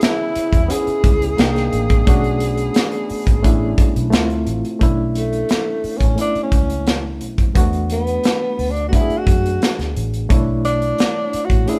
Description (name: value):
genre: lush 1970s-style soul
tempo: 88 BPM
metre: 4/4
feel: straight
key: B dorian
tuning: A4 = 440 Hz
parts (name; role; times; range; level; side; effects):
- breathy tenor saxophone; melody; 0.0-11.8 s; A3 to G#4; -24 LUFS; equal; none
- barky reed electric piano; accompaniment; 0.0-11.8 s; G#3 to G5; -25 LUFS; equal; overdrive, fast tremolo
- warm French horn section; sustained chords; 0.0-4.8, 10.3-11.8 s; C3 to C#5; -33 LUFS; equal; none
- modern studio drum kit; drums; 0.0-11.8 s; hi-hat, kick drum, snare drum; -20 LUFS; equal; none
- vintage muted fingered electric bass; bass; 0.4-11.7 s; G#1 to F#2; -25 LUFS; equal; none
room: light reverb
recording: band playing live in one room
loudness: -18 LUFS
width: mono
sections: 0.0-4.8 A section; 4.8-11.8 B section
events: tenor saxophone solo 4.8-11.8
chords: 0.0 C#m7; 1.4 Cm9; 2.1 Bm9; 4.1 Dm7; 4.8 Bm11; 7.6 E9sus4; 10.3 Bm11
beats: 0.02 0.70 1.39 | 2.07 2.76 3.44 4.13 | 4.81 5.50 6.18 6.87 | 7.55 8.24 8.93 9.62 | 10.30 10.99 11.68